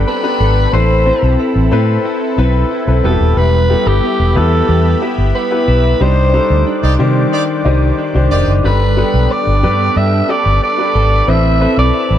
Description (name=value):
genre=pop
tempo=91 BPM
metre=4/4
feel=straight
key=G major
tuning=A4 = 440 Hz
part: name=warm concert grand piano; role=accompaniment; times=0.0-12.2 s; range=Eb3 to D5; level=-17 LUFS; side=left 5 dB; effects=none
part: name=sweeping resonant pad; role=sustained chords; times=0.0-12.2 s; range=C4 to D6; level=-24 LUFS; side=equal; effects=chorus
part: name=direct-recorded clean electric guitar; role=riff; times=0.0-12.2 s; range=G3 to B4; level=-21 LUFS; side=right 9 dB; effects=ensemble chorus
part: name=vintage muted fingered electric bass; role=bass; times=0.0-12.2 s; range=Eb1 to C3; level=-13 LUFS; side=equal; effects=none
part: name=raspy alto saxophone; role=melody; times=0.1-12.2 s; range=G4 to E5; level=-17 LUFS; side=equal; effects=ping-pong delay
part: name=clear horn section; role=stabs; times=6.8-8.5 s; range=Eb3 to D5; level=-22 LUFS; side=right 2 dB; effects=none
room=light reverb, small room reverb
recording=dark, warm production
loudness=-10 LUFS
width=side -10 dB against mid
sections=0.0-12.2 A section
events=band accent 6.0-8.6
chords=0.0 Gadd9; 0.7 Amadd9; 3.0 Em; 6.0 Cmadd9; 8.6 Gadd9; 11.3 Amadd9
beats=0.07 | 0.73 1.39 2.05 2.71 | 3.37 4.03 4.69 5.35 | 6.01 6.67 7.33 7.99 | 8.64 9.30 9.96 10.62 | 11.28 11.94